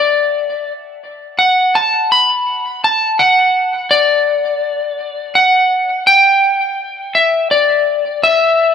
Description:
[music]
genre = rock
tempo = 56 BPM (dotted quarters)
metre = 6/8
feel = straight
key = D major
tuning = A4 = 440 Hz
[part]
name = electric slide guitar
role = melody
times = 0.0-8.7 s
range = D5 to B5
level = -11 LUFS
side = left 1 dB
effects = analog delay
[sound]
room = moderate large studio reverb, RT60 1.2 s, digital ambience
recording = none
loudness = -11 LUFS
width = side -7 dB against mid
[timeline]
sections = 0.0-8.7 A section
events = none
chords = none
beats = | 1.03 2.11 | 3.19 4.26 | 5.34 6.42 | 7.50 8.58

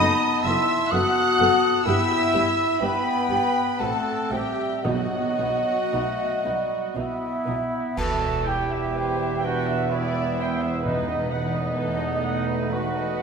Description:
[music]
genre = classical, slow romantic movement for symphony orchestra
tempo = 55-66 BPM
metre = 3/4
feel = rubato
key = E minor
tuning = A4 = 440 Hz
[part]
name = dark studio violin section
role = melody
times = 0.0-13.2 s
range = E5 to F#6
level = -31 LUFS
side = left 2 dB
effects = none
[part]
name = mellow clarinet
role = second line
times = 0.0-13.2 s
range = G3 to F#4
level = -32 LUFS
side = equal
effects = none
[part]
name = mellow cor anglais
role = second line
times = 0.0-7.6 s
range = D#5 to A5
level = -33 LUFS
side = right 4 dB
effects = none
[part]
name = mellow hollow concert flute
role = second line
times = 0.0-13.2 s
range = D#5 to D#6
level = -28 LUFS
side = right 1 dB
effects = none
[part]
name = warm studio violin section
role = second line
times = 0.0-13.2 s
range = F#4 to F#5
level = -32 LUFS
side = left 3 dB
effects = none
[part]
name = dark studio viola section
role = accompaniment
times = 0.0-13.2 s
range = A3 to G5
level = -32 LUFS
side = right 2 dB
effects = none
[part]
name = mellow French horn section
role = sustained chords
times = 0.0-13.2 s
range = F#3 to F#4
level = -29 LUFS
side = left 5 dB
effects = none
[part]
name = dark trumpet section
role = stabs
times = 0.0-13.2 s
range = D#4 to F#5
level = -29 LUFS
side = right 3 dB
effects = none
[part]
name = dark studio cello section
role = bass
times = 0.0-13.2 s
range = E2 to B2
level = -33 LUFS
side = right 3 dB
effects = none
[part]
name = warm studio double bass section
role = bass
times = 0.0-13.2 s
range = E1 to B1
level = -33 LUFS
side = right 3 dB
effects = none
[part]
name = timpani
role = percussion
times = 4.8-6.4, 10.9-12.2 s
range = E2 to B2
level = -32 LUFS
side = right 2 dB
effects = none
[part]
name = clash cymbals and concert bass drum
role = percussion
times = 8.0-9.9 s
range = none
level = -33 LUFS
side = right 1 dB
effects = none
[sound]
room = wet concert hall reverb, RT60 1.9 s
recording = minimal, uncompressed stereo recording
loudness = -21 LUFS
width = side -6 dB against mid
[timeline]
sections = 0.0-8.0 A section; 8.0-13.2 B section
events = band accent 8.0-9.0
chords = 0.0 B7/F#; 1.9 Em/G; 3.8 F#dim/A; 4.9 B; 8.0 Em; 10.8 B7/E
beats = 0.93 | 1.87 2.83 3.81 | 4.86 5.94 6.97 | 7.98 8.95 9.91 | 10.85 11.77 12.70

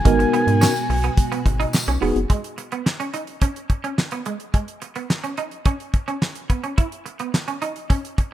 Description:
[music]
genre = early-eighties boogie funk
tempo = 107 BPM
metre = 4/4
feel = straight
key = G# minor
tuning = A4 = 439 Hz
[part]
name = expressive synth lead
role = melody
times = 0.0-1.7 s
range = G#5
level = -25 LUFS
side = right 1 dB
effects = chorus, slapback echo
[part]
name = tine electric piano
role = accompaniment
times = 0.0-2.2 s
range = B3 to A#4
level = -21 LUFS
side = equal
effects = medium stereo tremolo
[part]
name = string machine, full ensemble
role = sustained chords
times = 0.0-2.3 s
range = B2 to F#4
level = -29 LUFS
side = equal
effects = phaser, ensemble chorus
[part]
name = semi-hollow electric guitar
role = riff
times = 0.1-8.2 s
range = G#3 to E4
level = -28 LUFS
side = right 4 dB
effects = ensemble chorus
[part]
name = rubbery square bass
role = bass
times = 0.1-2.3 s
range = E1 to G#2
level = -21 LUFS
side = equal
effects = none
[part]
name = damped 70s drum kit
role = drums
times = 0.1-8.3 s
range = handclaps, hi-hat, kick drum, snare drum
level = -20 LUFS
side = equal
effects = none
[part]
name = tambourine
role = percussion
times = 0.6-1.9 s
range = none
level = -29 LUFS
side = left 2 dB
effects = none
[sound]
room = small room ambience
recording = rough home demo mix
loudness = -20 LUFS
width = side -12 dB against mid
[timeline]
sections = 0.0-2.3 A section; 2.3-8.3 B section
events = none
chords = 0.1 G#m7; 2.3 G#m; 6.5 N.C.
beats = | 0.06 0.61 1.18 1.74 | 2.30 2.86 3.42 3.98 | 4.54 5.10 5.66 6.22 | 6.78 7.34 7.91

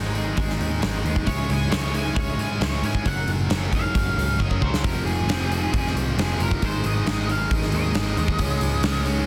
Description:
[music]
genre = quiet-loud alternative rock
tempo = 134 BPM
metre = 4/4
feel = straight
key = unclear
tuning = A4 = 440 Hz
[part]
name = twelve-string electric guitar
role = arpeggios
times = 0.0-4.8 s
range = Ab2 to Bb4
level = -35 LUFS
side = equal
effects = tremolo, analog delay
[part]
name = scooped high-gain guitar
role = riff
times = 0.0-9.3 s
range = F2 to Db4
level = -33 LUFS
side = equal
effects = distortion
[part]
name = picked electric bass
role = bass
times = 0.0-9.2 s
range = F1 to Ab2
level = -28 LUFS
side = equal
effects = none
[part]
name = huge arena drum kit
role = drums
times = 0.2-9.2 s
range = hi-hat, kick drum, snare drum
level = -27 LUFS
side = equal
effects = soft clipping on kick, soft clipping on snare
[part]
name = octave-fuzz lead guitar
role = melody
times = 1.3-9.0 s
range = Ab4 to Ab5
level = -33 LUFS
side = equal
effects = distortion, analog delay
[part]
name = biting overdriven guitar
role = riff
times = 4.8-9.3 s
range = F2 to Db4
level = -31 LUFS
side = equal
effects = none
[sound]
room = small room ambience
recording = dense, heavily limited modern master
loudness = -23 LUFS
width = mono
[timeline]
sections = 0.0-9.3 A section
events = lead electric guitar solo 0.0-9.3; drum fill 4.4-4.8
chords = 0.0 Ab; 1.3 Dbm; 3.1 Gb; 4.8 Fm; 6.6 Ab5; 8.4 Db5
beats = 0.37 0.82 | 1.27 1.71 2.16 2.61 | 3.05 3.50 3.95 4.39 | 4.84 5.29 5.73 6.18 | 6.62 7.07 7.51 7.96 | 8.40 8.85

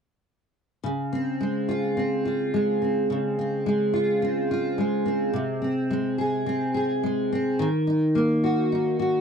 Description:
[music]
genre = pop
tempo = 106 BPM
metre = 4/4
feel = straight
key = Db major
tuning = A4 = 440 Hz
[part]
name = fingerpicked steel-string acoustic guitar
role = accompaniment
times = 0.8-9.2 s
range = C3 to Ab4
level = -22 LUFS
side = equal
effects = double-tracked left and right
[sound]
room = light reverb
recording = dry, close 1970s-style studio recording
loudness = -22 LUFS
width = side -6 dB against mid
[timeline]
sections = 0.8-9.2 A section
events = none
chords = 0.8 Dbmaj7; 5.4 Ab/C; 7.6 Ebm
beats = | 0.84 1.40 1.97 2.53 | 3.10 3.66 4.23 4.79 | 5.36 5.92 6.48 7.05 | 7.61 8.17 8.73

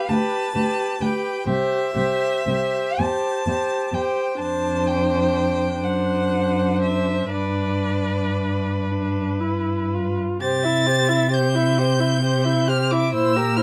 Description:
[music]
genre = classical, slow romantic movement for string quartet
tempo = 38-46 BPM (dotted quarters)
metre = 6/8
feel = rubato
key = C major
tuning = A4 = 441 Hz
[part]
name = rich violin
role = melody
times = 0.0-13.6 s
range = D5 to A6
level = -29 LUFS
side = equal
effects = none
[part]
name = rich violin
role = second line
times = 0.0-13.6 s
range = Bb4 to E5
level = -27 LUFS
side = equal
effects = none
[part]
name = dark viola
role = accompaniment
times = 0.0-13.6 s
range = D4 to G4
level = -28 LUFS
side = equal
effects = none
[part]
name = dark cello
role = bass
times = 0.1-13.6 s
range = C2 to C3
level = -26 LUFS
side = equal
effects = none
[sound]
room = light reverb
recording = close, detailed microphones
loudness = -22 LUFS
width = mono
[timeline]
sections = 0.0-10.4 A section; 10.4-13.6 B section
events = none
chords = 0.0 G/D; 1.5 C; 3.0 C5; 4.4 Dm7/F; 5.8 D7/F#; 7.3 G; 10.4 C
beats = 0.11 | 1.48 3.00 | 4.41 5.83 | 7.35 8.90 | 10.42 11.79 | 13.13

